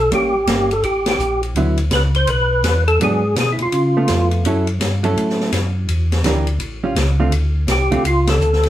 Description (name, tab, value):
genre	soul jazz organ trio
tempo	166 BPM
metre	4/4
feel	swing 63% on 8ths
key	A mixolydian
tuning	A4 = 439 Hz
part	percussive tonewheel organ	melody	0.0-4.3, 7.7-8.7 s	E4 to C5	-17 LUFS	equal	slow rotary speaker, chorus vibrato
part	mellow tonewheel organ	bass	0.0-8.7 s	G1 to C#3	-18 LUFS	equal	slow rotary speaker
part	hollow-body jazz guitar	accompaniment	0.1-8.0 s	D3 to Bb4	-20 LUFS	right 2 dB	none
part	open jazz drum kit	drums	0.1-8.7 s	hi-hat, ride cymbal, snare drum	-24 LUFS	left 1 dB	none
room	wet studio reverb, RT60 0.5 s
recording	band playing live in one room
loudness	-15 LUFS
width	side -12 dB against mid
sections	0.0-8.7 A section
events	band accent 1.0, 8.2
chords	0.1 A7b9; 1.6 D69; 3.0 G#m7b5; 3.7 C#aug7; 4.4 F#m7; 5.9 Em7b5; 6.6 A7alt; 7.3 Dm7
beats	| 0.12 0.48 0.84 1.20 | 1.56 1.92 2.28 2.64 | 3.00 3.36 3.73 4.08 | 4.45 4.81 5.17 5.53 | 5.89 6.25 6.61 6.97 | 7.33 7.69 8.05 8.41